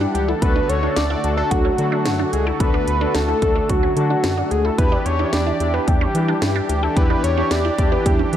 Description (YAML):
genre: synth-pop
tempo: 110 BPM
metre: 4/4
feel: straight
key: unclear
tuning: A4 = 440 Hz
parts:
  - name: fat analog lead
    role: melody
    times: 0.0-8.4 s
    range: F#4 to D5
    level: -22 LUFS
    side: equal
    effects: phaser, analog delay
  - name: analog synth brass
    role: accompaniment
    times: 0.0-8.4 s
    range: D4 to F#5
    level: -24 LUFS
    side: left 2 dB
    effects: chorus
  - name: brassy analog pad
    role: sustained chords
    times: 0.0-8.4 s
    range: D3 to G4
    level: -26 LUFS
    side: right 1 dB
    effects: chorus
  - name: resonant blip pluck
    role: arpeggios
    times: 0.0-8.4 s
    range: C#4 to E4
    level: -29 LUFS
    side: right 3 dB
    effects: phaser, analog delay
  - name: rubbery square bass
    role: bass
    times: 0.0-8.4 s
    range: C#2 to E3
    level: -22 LUFS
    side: equal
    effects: none
  - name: house drum kit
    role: drums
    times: 0.1-8.4 s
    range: hi-hat, kick drum, snare drum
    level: -22 LUFS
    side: equal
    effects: none
room: light reverb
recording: none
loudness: -16 LUFS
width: side -10 dB against mid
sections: 0.0-8.4 A section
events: none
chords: 0.4 D; 4.8 Em7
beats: | 0.42 0.97 1.51 2.06 | 2.60 3.15 3.69 4.24 | 4.78 5.33 5.88 6.42 | 6.97 7.51 8.06